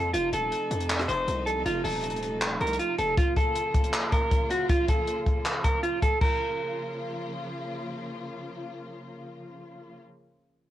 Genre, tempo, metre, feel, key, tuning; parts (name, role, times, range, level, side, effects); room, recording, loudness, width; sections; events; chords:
hip hop, trap; 158 BPM; 4/4; half-time; A4 = 436 Hz
clean electric guitar; melody; 0.0-7.3 s; F4 to C5; -27 LUFS; right 1 dB; low-pass filter, cassette tape
rich symphonic string section; sustained chords; 0.0-10.0 s; C3 to F4; -36 LUFS; left 1 dB
distorted 808-style bass; bass; 0.0-3.2 s; Eb1 to F2; -33 LUFS; equal; distortion
compact cocktail drum kit; drums; 0.1-6.3 s; crash cymbal, handclaps, hi-hat, kick drum, rim click; -26 LUFS; equal; cassette tape
moderate booth ambience, RT60 0.2 s; home recording on cassette; -25 LUFS; side -12 dB against mid
0.0-3.2 A section; 3.2-6.2 B section; 6.2-9.3 C section
0.1 F7; 3.2 Bbm